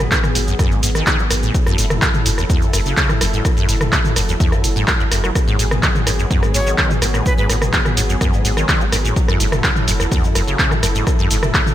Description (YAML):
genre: acid house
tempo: 126 BPM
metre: 4/4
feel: straight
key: unclear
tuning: A4 = 440 Hz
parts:
  - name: warm analog pad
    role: sustained chords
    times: 0.0-11.7 s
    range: F#3 to A4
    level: -25 LUFS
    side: equal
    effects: chorus, sidechain pumping
  - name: saturated sub bass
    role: bass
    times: 0.0-11.5 s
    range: F#1 to G#1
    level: -21 LUFS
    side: equal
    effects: sidechain pumping
  - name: punchy analog drum machine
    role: drums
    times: 0.0-11.7 s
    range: cabasa, handclaps, hi-hat, rim click, toms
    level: -19 LUFS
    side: equal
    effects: none
  - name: acid bass, saw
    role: riff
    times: 0.1-11.6 s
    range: E2 to G#3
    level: -22 LUFS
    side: equal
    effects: tube saturation, ensemble chorus, sidechain pumping, digital delay
  - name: electronic kick drum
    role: drums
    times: 0.1-11.6 s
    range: none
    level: -18 LUFS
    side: equal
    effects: none
  - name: breathy bright jazz flute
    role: melody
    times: 6.5-7.5 s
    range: B4 to C#5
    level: -26 LUFS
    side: equal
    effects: digital delay
room: light reverb, digital ambience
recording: bright 1980s-style digital production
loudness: -14 LUFS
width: side -12 dB against mid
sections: 0.0-11.7 A section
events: none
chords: 0.0 G#m7; 1.5 F#m7; 5.4 G#m7; 9.2 F#m7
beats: 0.12 0.59 1.07 | 1.54 2.02 2.50 2.97 | 3.45 3.92 4.40 4.88 | 5.35 5.83 6.31 6.78 | 7.26 7.73 8.21 8.69 | 9.16 9.64 10.12 10.59 | 11.07 11.54